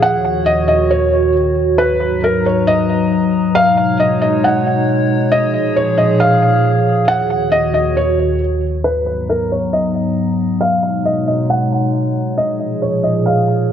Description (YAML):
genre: hip hop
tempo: 136 BPM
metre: 4/4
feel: half-time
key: G# dorian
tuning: A4 = 440 Hz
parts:
  - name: felt-muted upright piano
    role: melody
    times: 0.0-13.7 s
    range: A#4 to F#5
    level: -16 LUFS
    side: equal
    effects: low-pass filter, tape echo
  - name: warbly tape-like pad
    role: sustained chords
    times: 0.0-13.7 s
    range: D#2 to A#5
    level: -15 LUFS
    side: equal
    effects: chorus, built-in reverb
room: light reverb, small room reverb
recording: echo-heavy mix, low-pass filter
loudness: -13 LUFS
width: side -9 dB against mid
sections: 0.0-8.8 A section; 8.8-13.7 B section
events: none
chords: 0.0 D#m7; 1.8 G#m9; 3.6 B69; 5.3 A#m7; 7.1 D#m7; 8.8 G#m9; 10.6 B69; 12.4 A#m7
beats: | 0.03 0.47 0.91 1.35 | 1.79 2.23 2.67 3.11 | 3.56 4.00 4.44 4.88 | 5.32 5.76 6.20 6.64 | 7.08 7.53 7.97 8.41 | 8.85 9.29 9.73 10.17 | 10.61 11.05 11.50 11.94 | 12.38 12.82 13.26 13.70